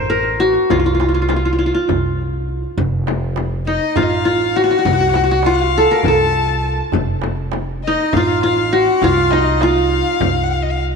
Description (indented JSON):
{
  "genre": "Turkish makam ensemble",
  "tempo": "202 BPM (eighths)",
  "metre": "7/8",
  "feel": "straight",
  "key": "F makam hicaz",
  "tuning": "A4 = 441 Hz",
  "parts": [
    { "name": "qanun", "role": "melody", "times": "0.0-11.0 s", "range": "Eb4 to C5", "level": "-16 LUFS", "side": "equal", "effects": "slapback echo" },
    { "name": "upright bass", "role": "bass", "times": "0.0-10.9 s", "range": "F1 to C2", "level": "-21 LUFS", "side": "equal", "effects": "none" },
    { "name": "darbuka", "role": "percussion", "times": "0.1-10.9 s", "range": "none", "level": "-25 LUFS", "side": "right 7 dB", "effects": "none" },
    { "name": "frame drum", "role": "percussion", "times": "0.7-10.3 s", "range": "none", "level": "-26 LUFS", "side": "left 10 dB", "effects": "none" },
    { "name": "rich violin", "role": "second line", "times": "3.7-10.8 s", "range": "Eb5 to A5", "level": "-20 LUFS", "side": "left 8 dB", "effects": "slapback echo" }
  ],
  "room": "moderate plate reverb, RT60 2.6 s",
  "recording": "1960s-style stereo with parts hard left and right",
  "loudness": "-14 LUFS",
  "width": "side -5 dB against mid",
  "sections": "0.0-11.0 A section",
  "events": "none",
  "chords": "none",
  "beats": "0.10 0.40 | 0.70 1.00 1.29 1.59 1.89 2.18 2.48 | 2.78 3.08 3.37 3.67 3.97 4.26 4.56 | 4.86 5.16 5.45 5.75 6.05 6.34 6.64 | 6.94 7.24 7.53 7.83 8.13 8.42 8.72 | 9.02 9.31 9.61 9.91 10.20 10.50 10.80"
}